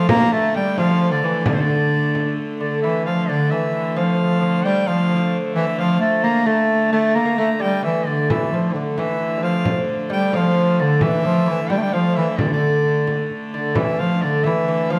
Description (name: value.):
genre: medieval dance.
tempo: 88 BPM (dotted quarters).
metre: 6/8.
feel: straight.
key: D minor.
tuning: A4 = 440 Hz.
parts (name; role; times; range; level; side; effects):
warm bass clarinet; melody; 0.0-15.0 s; D3 to Bb3; -22 LUFS; equal; none.
bright shawm; second line; 0.0-15.0 s; C5 to Bb5; -27 LUFS; equal; none.
lute; second line; 0.0-15.0 s; D3 to Bb3; -27 LUFS; equal; none.
clear hurdy-gurdy; drone; 0.0-15.0 s; D3 to A3; -30 LUFS; equal; none.
frame drum; percussion; 0.1-2.5, 8.3-14.7 s; none; -27 LUFS; equal; none.
room: wet recital hall reverb, RT60 1.4 s.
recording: none.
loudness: -19 LUFS.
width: mono.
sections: 0.0-2.8 A section; 2.8-13.8 B section; 13.8-15.0 B section.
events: none.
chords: none.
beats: | 0.09 0.78 | 1.46 2.15 | 2.83 3.51 | 4.20 4.88 | 5.56 6.25 | 6.93 7.61 | 8.30 8.98 | 9.66 10.35 | 11.03 11.71 | 12.39 13.08 | 13.76 14.44.